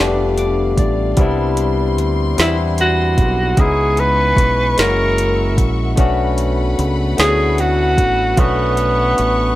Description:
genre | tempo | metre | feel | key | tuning
slow six-eight R&B | 50 BPM (dotted quarters) | 6/8 | straight | unclear | A4 = 439 Hz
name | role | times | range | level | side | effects
breathy tenor saxophone | melody | 0.0-9.6 s | B3 to B4 | -16 LUFS | right 1 dB | slapback echo
barky tine electric piano | accompaniment | 0.0-9.6 s | G3 to D6 | -19 LUFS | left 3 dB | phaser
warm studio string section | sustained chords | 0.0-9.6 s | A3 to C#6 | -28 LUFS | left 3 dB | none
deep dub fingered electric bass | bass | 0.0-9.5 s | F1 to E2 | -19 LUFS | equal | none
smooth R&B drum kit | drums | 0.4-9.4 s | hi-hat, kick drum, snare drum | -16 LUFS | equal | none
room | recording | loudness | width
little or no reverb | none | -13 LUFS | side -15 dB against mid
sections
0.0-9.6 A section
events
tine electric piano fill 0.0-1.2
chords
0.0 G7; 1.2 Cmaj7; 3.6 C#m7; 4.8 F#7; 6.0 Bm7

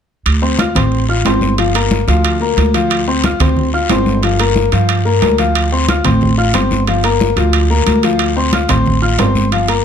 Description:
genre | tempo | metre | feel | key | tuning
latin, salsa | 181 BPM | 4/4 | straight | D minor | A4 = 440 Hz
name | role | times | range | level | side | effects
upright bass | bass | 0.3-9.8 s | G1 to G2 | -15 LUFS | right 2 dB | none
congas | percussion | 0.3-9.8 s | none | -20 LUFS | left 2 dB | none
guiro | percussion | 0.3-9.8 s | none | -26 LUFS | left 6 dB | none
timbales | percussion | 0.3-9.8 s | none | -20 LUFS | right 9 dB | none
clear concert grand piano | accompaniment | 0.4-9.8 s | F3 to F6 | -15 LUFS | left 4 dB | none
room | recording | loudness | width
light reverb | close, detailed microphones | -11 LUFS | side -8 dB against mid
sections
0.3-9.8 A section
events
none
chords
0.3 Dm7; 1.6 Gm7; 2.9 Dm7; 4.2 Gm7; 5.6 Dm7; 6.9 Gm7; 8.2 Dm7

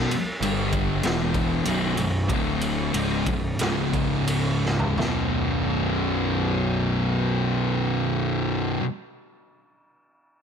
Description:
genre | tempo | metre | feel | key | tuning
stoner and doom metal | 84-99 BPM | 4/4 | straight | B minor | A4 = 440 Hz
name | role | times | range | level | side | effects
thick fuzz guitar | riff | 0.0-8.8 s | B1 to G3 | -26 LUFS | left 9 dB | distortion
thick fuzz guitar | riff | 0.0-8.8 s | B1 to G3 | -27 LUFS | right 11 dB | distortion
fuzz picked electric bass | bass | 0.0-8.8 s | B0 to G1 | -30 LUFS | right 1 dB | overdrive
raw garage drum kit | drums | 0.1-5.2 s | kick drum, ride cymbal, snare drum, toms | -29 LUFS | right 1 dB | none
room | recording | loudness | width
small room ambience | none | -22 LUFS | side -7 dB against mid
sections
0.0-5.0 A section; 5.0-7.8 B section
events
slowing down 0.0-5.0; drum fill 4.6-5.0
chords
0.4 G5; 1.0 E5; 1.7 B5; 2.3 D5; 2.9 B5; 3.6 C#5; 5.0 B5

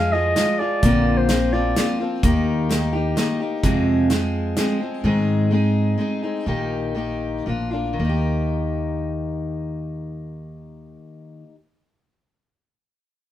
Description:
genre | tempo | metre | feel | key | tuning
acoustic folk duo or small band | 113-128 BPM | 3/4 | straight | Eb major | A4 = 440 Hz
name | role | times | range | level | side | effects
warm clarinet | melody | 0.0-2.0 s | C5 to F5 | -22 LUFS | right 1 dB | none
picked steel-string acoustic guitar | accompaniment | 0.0-11.6 s | F2 to Ab4 | -22 LUFS | left 1 dB | none
upright bass | bass | 0.0-11.0 s | Bb1 to Ab2 | -24 LUFS | equal | none
natural country drum kit | drums | 0.4-4.7 s | hi-hat, kick drum, snare drum | -23 LUFS | equal | none
room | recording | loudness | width
moderate studio reverb, RT60 0.8 s | band playing live in one room | -19 LUFS | side -12 dB against mid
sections
0.0-2.2 A section; 2.2-8.0 B section; 8.0-11.2 C section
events
slowing down 5.0-8.0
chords
0.0 Fm; 0.8 Bbadd9; 2.2 Eb; 3.6 Fm; 5.0 Ab; 6.5 Eb/Bb; 7.5 Bb; 8.0 Eb

